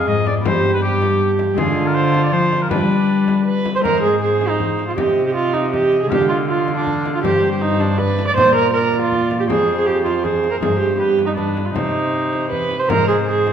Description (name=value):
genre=classical, renaissance-style consort dance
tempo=159 BPM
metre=3/4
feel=straight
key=unclear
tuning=A4 = 440 Hz
part: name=clear oboe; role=melody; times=0.0-13.5 s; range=G4 to F5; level=-25 LUFS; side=left 2 dB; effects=none
part: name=warm viola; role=second line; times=0.0-13.5 s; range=D4 to D5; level=-18 LUFS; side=right 3 dB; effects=none
part: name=concert harp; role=accompaniment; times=0.0-13.5 s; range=F2 to Ab4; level=-23 LUFS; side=left 4 dB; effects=none
part: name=rich cello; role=bass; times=0.0-13.5 s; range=F2 to G3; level=-22 LUFS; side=right 1 dB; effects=none
part: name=frame drum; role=percussion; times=0.3-13.5 s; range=none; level=-27 LUFS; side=left 3 dB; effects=none
room=wet recital hall reverb, RT60 1.4 s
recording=none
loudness=-15 LUFS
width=side -8 dB against mid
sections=0.0-3.8 A section; 3.8-12.9 B section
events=none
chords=0.4 G; 1.6 Ddim; 2.7 G; 3.8 Ab; 5.0 Cm; 6.1 Ddim; 7.2 Gsus4; 8.0 G; 8.4 Bb; 9.5 F5; 10.6 G7sus4; 11.0 G7; 11.7 Cm; 12.9 Ab